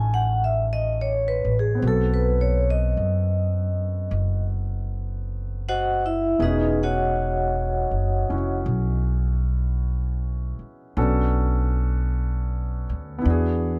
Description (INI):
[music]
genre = jazz ballad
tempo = 52 BPM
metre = 4/4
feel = swing 69% on 8ths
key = unclear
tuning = A4 = 441 Hz
[part]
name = vibraphone with medium hard mallets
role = melody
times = 0.0-8.6 s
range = D#4 to G#5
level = -27 LUFS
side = equal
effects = none
[part]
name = warm concert grand piano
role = accompaniment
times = 0.0-13.8 s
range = A3 to A4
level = -33 LUFS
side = equal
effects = none
[part]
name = upright bass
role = bass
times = 0.0-13.8 s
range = E1 to F#2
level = -25 LUFS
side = equal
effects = none
[sound]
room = little or no reverb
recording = dark, warm production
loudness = -24 LUFS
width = mono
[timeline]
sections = 0.0-13.8 A section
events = vibraphone solo 0.0-13.8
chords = 0.0 F#m9; 1.8 B7b9; 6.4 Emaj13; 11.0 Bm7; 13.2 E9